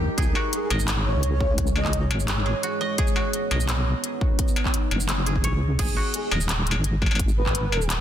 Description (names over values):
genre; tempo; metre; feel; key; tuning
half-time drum and bass; 171 BPM; 4/4; half-time; G# minor; A4 = 439 Hz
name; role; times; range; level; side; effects
deep dark ambient pad; sustained chords; 0.0-5.8 s; G3 to C#5; -31 LUFS; right 1 dB; chorus, built-in reverb, sidechain pumping
koto; arpeggios; 0.0-8.0 s; F#4 to G5; -32 LUFS; right 2 dB; dub echo
deep soft wobble bass; bass; 0.0-8.0 s; D#1 to D#2; -24 LUFS; equal; chorus
electronic kick drum; drums; 0.2-7.5 s; none; -24 LUFS; equal; none
industrial drum kit; drums; 0.2-8.0 s; crash cymbal, handclaps, hi-hat, shaker, struck metal; -28 LUFS; left 1 dB; none
breathy flute-like synth lead; melody; 0.5-2.0, 6.1-7.8 s; G#4 to D#5; -32 LUFS; equal; ensemble chorus, cassette tape, dub echo
room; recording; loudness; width
light reverb; dense, heavily limited modern master; -21 LUFS; side -10 dB against mid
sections
0.0-5.8 A section; 5.8-8.0 A section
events
drop 0.0-5.8, 5.8-8.0; kick drops out 5.4-5.8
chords
0.2 C#m; 3.0 Badd9; 5.8 G#5